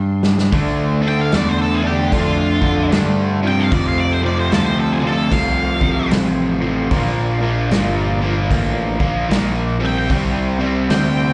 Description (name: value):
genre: blues rock power trio and southern rock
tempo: 75 BPM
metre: 4/4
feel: swing 62% on 8ths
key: unclear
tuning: A4 = 439 Hz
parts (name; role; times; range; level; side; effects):
- growling picked electric bass; bass; 0.0-11.3 s; G1 to G2; -22 LUFS; equal; overdrive
- vintage drum kit; drums; 0.2-11.1 s; hi-hat, kick drum, snare drum; -22 LUFS; equal; none
- overdriven tonewheel organ; sustained chords; 0.5-11.3 s; A3 to E5; -32 LUFS; equal; none
- crunchy overdriven guitar; riff; 0.5-11.3 s; F2 to D4; -22 LUFS; equal; slapback echo
- octave-fuzz lead guitar; melody; 1.1-11.3 s; F4 to G5; -25 LUFS; equal; wah, distortion, slapback echo
room: little or no reverb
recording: live gig heard through the venue's PA, club reverb, nothing above 10.5 kHz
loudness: -17 LUFS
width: mono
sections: 0.0-11.3 A section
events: drum fill 0.0-0.5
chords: 0.0 N.C.; 0.5 Dm; 3.3 F; 6.9 Bb; 9.7 C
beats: | 0.53 1.33 2.12 2.92 | 3.72 4.52 5.32 6.11 | 6.91 7.71 8.51 9.30 | 10.10 10.90